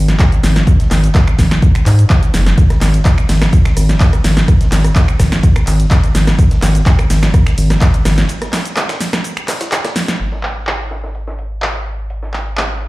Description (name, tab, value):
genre	acid house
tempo	126 BPM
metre	4/4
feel	straight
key	unclear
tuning	A4 = 440 Hz
part	round analog bass	bass	0.0-12.9 s	F#1 to G#2	-13 LUFS	equal	sidechain pumping
part	punchy analog drum machine	drums	0.1-12.7 s	cabasa, finger snaps, handclaps, hi-hat, ride cymbal, rim click, snare drum	-18 LUFS	equal	low-pass filter on snare, low-pass filter on perc, low-pass filter on hats, low-pass filter on cymbals, low-pass filter on room
part	breakbeat sampler-style drum kit	drums	0.2-12.9 s	hi-hat, snare drum	-30 LUFS	equal	none
part	electronic kick drum	drums	0.2-7.9 s	none	-11 LUFS	equal	none
room	little or no reverb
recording	played on a big sound system in a bare room, large studio reverb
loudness	-10 LUFS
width	side -20 dB against mid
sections	0.0-10.2 A section; 10.2-12.9 B section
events	drop 0.0-10.2; break 8.3-10.2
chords	none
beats	0.20 | 0.67 1.15 1.62 2.10 | 2.58 3.05 3.53 4.01 | 4.48 4.96 5.43 5.91 | 6.39 6.86 7.34 7.82 | 8.29 8.77 9.24 9.72 | 10.20 10.67 11.15 11.62 | 12.10 12.58